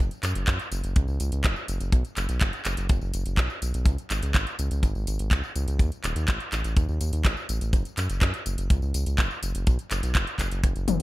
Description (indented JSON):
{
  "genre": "italo disco",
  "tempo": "124 BPM",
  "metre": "4/4",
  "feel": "straight",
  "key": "unclear",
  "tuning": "A4 = 440 Hz",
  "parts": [
    { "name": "round analog bass", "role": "bass", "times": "0.0-11.0 s", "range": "D#1 to F#2", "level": "-27 LUFS", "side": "equal", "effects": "none" },
    { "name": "kick drum", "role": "drums", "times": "0.0-10.7 s", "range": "none", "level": "-22 LUFS", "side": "equal", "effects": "none" },
    { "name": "house drum kit", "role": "drums", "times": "0.1-11.0 s", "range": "handclaps, hi-hat, tambourine, toms", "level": "-30 LUFS", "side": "left 1 dB", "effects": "gated reverb" }
  ],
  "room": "little or no reverb",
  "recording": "none",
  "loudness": "-24 LUFS",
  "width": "side -18 dB against mid",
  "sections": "0.0-11.0 A section",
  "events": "none",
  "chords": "none"
}